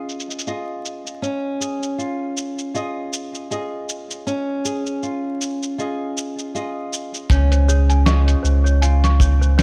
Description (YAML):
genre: folktronica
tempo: 79 BPM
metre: 4/4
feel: swing 56% on 16ths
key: Db major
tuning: A4 = 440 Hz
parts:
  - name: flamenco guitar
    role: arpeggios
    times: 0.0-9.6 s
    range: Db4 to Eb5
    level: -27 LUFS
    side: equal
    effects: low-pass filter, tape echo
  - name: lo-fi sampler-style drum kit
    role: drums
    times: 0.1-9.6 s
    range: hi-hat, shaker, snare drum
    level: -26 LUFS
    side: equal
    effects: low-pass filter on perc, low-pass filter on hats, low-pass filter on snare
  - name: toy piano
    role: second line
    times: 7.3-9.6 s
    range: C5 to Db6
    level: -30 LUFS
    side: equal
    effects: tape echo
  - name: warm sub bass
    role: bass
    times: 7.3-9.6 s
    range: Db2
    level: -17 LUFS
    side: equal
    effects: none
  - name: kick drum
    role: drums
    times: 7.3-9.4 s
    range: none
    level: -22 LUFS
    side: equal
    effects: none
room: studio reverb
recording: vinyl crackle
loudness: -21 LUFS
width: mono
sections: 0.0-7.3 A section; 7.3-9.6 B section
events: none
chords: 0.0 Dbadd9